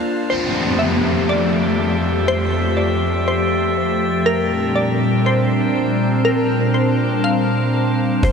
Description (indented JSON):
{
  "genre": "hip hop, atmospheric cloud-rap",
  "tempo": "121 BPM",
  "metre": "4/4",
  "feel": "half-time",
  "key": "F major",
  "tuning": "A4 = 440 Hz",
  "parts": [
    { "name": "glassy wavetable pluck", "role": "melody", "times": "0.0-8.3 s", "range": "Bb4 to F5", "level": "-23 LUFS", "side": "equal", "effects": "chorus, analog delay" },
    { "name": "warbly tape-like pad", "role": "sustained chords", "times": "0.0-8.3 s", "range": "F2 to A4", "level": "-18 LUFS", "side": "equal", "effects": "chorus, built-in reverb" },
    { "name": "drifting glass-harmonics texture", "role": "texture", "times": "0.0-8.3 s", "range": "D4 to A5", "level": "-24 LUFS", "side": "equal", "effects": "chorus, built-in reverb" },
    { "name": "downlifter and impact", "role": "sound effects", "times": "0.3-4.3, 8.2-8.3 s", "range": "none", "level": "-24 LUFS", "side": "equal", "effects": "none" },
    { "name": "warm 808-style bass", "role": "bass", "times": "8.2-8.3 s", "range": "F1", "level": "-15 LUFS", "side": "equal", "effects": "none" },
    { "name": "cajon", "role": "drums", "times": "8.2-8.3 s", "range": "none", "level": "-33 LUFS", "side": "equal", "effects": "none" }
  ],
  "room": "wet huge ambient reverb, RT60 7.9 s",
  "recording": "dreamy mix soaked in reverb",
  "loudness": "-15 LUFS",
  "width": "side -6 dB against mid",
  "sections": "0.3-8.2 A section",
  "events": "break 0.0",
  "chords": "0.3 Fmaj9; 4.3 Bb69"
}